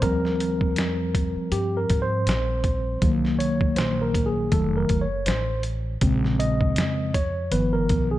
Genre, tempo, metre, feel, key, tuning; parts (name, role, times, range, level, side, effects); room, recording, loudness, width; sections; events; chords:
hip hop, jazz-hop; 80 BPM; 4/4; swing 57% on 16ths; A4 = 440 Hz
mellow tine electric piano; accompaniment; 0.0-8.2 s; Db3 to Eb5; -24 LUFS; equal; fast stereo tremolo
upright bass; bass; 0.0-8.2 s; F1 to Ab2; -27 LUFS; equal
trip hop sampler-style drum kit; drums; 0.0-8.1 s; hi-hat, kick drum, snare drum; -26 LUFS; equal
light reverb, digital ambience; dark, warm production; -21 LUFS; side -14 dB against mid
0.0-8.2 A section
tine electric piano solo 0.0-8.2
0.0 Eb69; 3.0 Cm7b5; 4.5 F7b9; 6.0 Bbm9; 7.5 G7alt